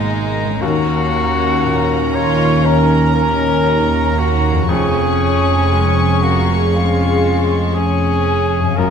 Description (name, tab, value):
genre	cinematic, emotional film score for orchestra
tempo	59 BPM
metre	4/4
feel	rubato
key	unclear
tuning	A4 = 440 Hz
part	warm symphonic violin section	melody	0.0-8.8 s	Bb5 to Db6	-26 LUFS	left 3 dB	none
part	clear clarinet	second line	0.0-8.9 s	Eb4 to Db5	-21 LUFS	equal	none
part	concert flute	second line	0.0-8.9 s	Eb5 to Db6	-23 LUFS	equal	none
part	warm symphonic violin section	second line	0.0-8.9 s	Ab3 to F4	-24 LUFS	left 5 dB	none
part	felt-muted upright piano	accompaniment	0.0-8.9 s	Eb2 to Ab3	-25 LUFS	left 4 dB	none
part	rich studio viola section	accompaniment	0.0-8.8 s	Bb3 to Bb4	-23 LUFS	right 1 dB	none
part	dark French horn section	sustained chords	0.0-8.9 s	Cb3 to Ab4	-24 LUFS	left 3 dB	none
part	concert harp	arpeggios	0.0-8.9 s	F2 to F5	-25 LUFS	left 4 dB	none
part	dark symphonic double bass section	bass	0.0-8.9 s	F1 to Eb2	-19 LUFS	right 3 dB	none
part	warm symphonic cello section	bass	0.0-8.9 s	Eb2 to Ab2	-22 LUFS	right 1 dB	none
room	wet scoring stage reverb, RT60 1.5 s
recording	minimal, uncompressed stereo recording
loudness	-13 LUFS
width	side -7 dB against mid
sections	0.0-8.9 A section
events	none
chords	0.0 Abmadd9; 0.6 Ebm7; 4.7 Db/F